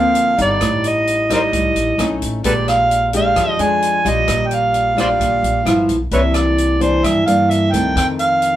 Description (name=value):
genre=bossa nova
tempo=131 BPM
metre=4/4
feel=straight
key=unclear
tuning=A4 = 440 Hz
part: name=overdriven harmonica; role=melody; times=0.0-8.6 s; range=A4 to Ab5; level=-16 LUFS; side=right 1 dB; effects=none
part: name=nylon-string guitar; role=accompaniment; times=0.0-8.6 s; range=F2 to G4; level=-19 LUFS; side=equal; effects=none
part: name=upright bass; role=bass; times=0.0-8.6 s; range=G1 to G2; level=-22 LUFS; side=equal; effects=none
part: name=open jazz drum kit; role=drums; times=0.1-8.5 s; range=hi-hat, kick drum, rim click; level=-25 LUFS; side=equal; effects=none
room=moderate studio ambience, RT60 0.4 s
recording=band playing live in one room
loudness=-14 LUFS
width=side -12 dB against mid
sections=0.0-8.6 A section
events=none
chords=0.0 Gm7; 0.6 Am7b5; 2.0 B9; 2.4 Bb6; 5.7 G6; 6.1 C9; 8.0 F7